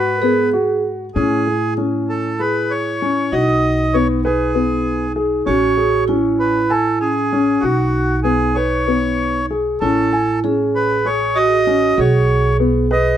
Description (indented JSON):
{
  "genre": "contemporary instrumental, chamber music in an uneven meter",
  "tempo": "194 BPM (eighths)",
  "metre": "7/8",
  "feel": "straight",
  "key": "unclear",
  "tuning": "A4 = 445 Hz",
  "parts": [
    { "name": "accordion", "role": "melody", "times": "0.0-13.2 s", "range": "F#4 to D#5", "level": "-20 LUFS", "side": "right 1 dB", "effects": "none" },
    { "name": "vibraphone with soft mallets", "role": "second line", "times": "0.0-13.2 s", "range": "C#4 to A#4", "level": "-20 LUFS", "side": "right 4 dB", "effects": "none" },
    { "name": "dark grand piano", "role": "arpeggios", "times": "0.0-13.2 s", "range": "B3 to G#5", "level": "-20 LUFS", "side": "left 4 dB", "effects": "none" },
    { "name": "upright bass", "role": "bass", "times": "0.0-13.2 s", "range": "A1 to A2", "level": "-23 LUFS", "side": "equal", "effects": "none" }
  ],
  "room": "light reverb",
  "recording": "close, detailed microphones",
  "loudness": "-14 LUFS",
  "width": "side -10 dB against mid",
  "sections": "0.0-1.2 A section; 1.2-13.2 B section",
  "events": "none",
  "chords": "0.0 G#m7; 1.2 Amaj7; 3.3 B; 5.5 Amaj7; 7.6 Badd9; 9.8 Amaj7; 12.0 Bsus2"
}